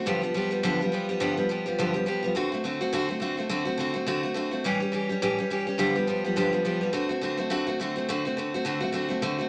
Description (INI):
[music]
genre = rock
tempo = 209 BPM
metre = 4/4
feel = swing 58% on 8ths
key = D mixolydian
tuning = A4 = 441 Hz
[part]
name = picked steel-string acoustic guitar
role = solo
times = 0.0-9.5 s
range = G2 to G4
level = -28 LUFS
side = equal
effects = none
[sound]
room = moderate club reverb, RT60 0.5 s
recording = none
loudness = -28 LUFS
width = mono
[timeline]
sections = 0.0-9.2 A section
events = none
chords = 0.1 G7; 2.4 D7; 4.6 A7; 5.8 G7; 6.9 D7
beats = | 0.06 0.35 0.63 0.92 | 1.21 1.49 1.78 2.06 | 2.35 2.64 2.92 3.21 | 3.50 3.78 4.07 4.36 | 4.64 4.93 5.21 5.50 | 5.79 6.08 6.36 6.65 | 6.93 7.22 7.51 7.80 | 8.08 8.37 8.66 8.95 | 9.23